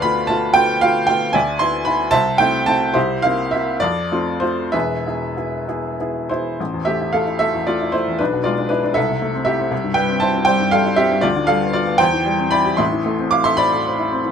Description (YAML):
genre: classical, romantic character piece for solo piano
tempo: 62-81 BPM (dotted quarters)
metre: 6/8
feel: rubato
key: A minor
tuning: A4 = 441 Hz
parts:
  - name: clear upright piano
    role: solo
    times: 0.0-14.3 s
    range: E1 to D6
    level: -16 LUFS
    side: equal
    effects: none
room: light reverb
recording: close, detailed microphones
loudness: -16 LUFS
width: side -7 dB against mid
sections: 0.0-6.6 A section; 6.6-14.3 B section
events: none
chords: 0.0 Bm7b5/D; 1.3 E5/D; 2.1 Am/C; 3.0 C7; 3.8 F; 4.7 E; 6.6 A5; 8.2 E7/B; 9.0 Am/C; 9.7 C; 11.2 G7/D; 12.0 C/E; 12.8 Am